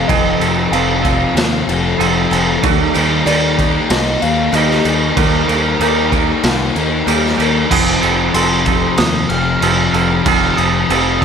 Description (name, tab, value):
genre	rock, shoegaze and dream pop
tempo	94 BPM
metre	4/4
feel	straight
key	unclear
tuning	A4 = 438 Hz
part	soft struck synth lead	melody	0.0-11.2 s	Bb4 to F6	-22 LUFS	equal	chorus, digital delay
part	picked twelve-string acoustic guitar	arpeggios	0.0-7.7 s	F4 to D5	-26 LUFS	left 10 dB	analog chorus, digital delay
part	thick fuzz guitar	riff	0.0-11.2 s	F2 to Eb4	-19 LUFS	left 11 dB	distortion, wide subtle chorus
part	twangy electric guitar	riff	0.0-11.2 s	Eb3 to A4	-19 LUFS	right 16 dB	reverse reverb
part	growling picked electric bass	bass	0.0-11.2 s	F1 to Eb2	-20 LUFS	right 1 dB	overdrive
part	raw garage drum kit	drums	0.1-11.2 s	crash cymbal, kick drum, snare drum	-16 LUFS	right 1 dB	none
room	small room reverb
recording	none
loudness	-12 LUFS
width	side -7 dB against mid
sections	0.0-7.7 A section; 7.7-11.2 A section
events	none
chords	0.0 F7; 2.6 Eb; 7.7 F7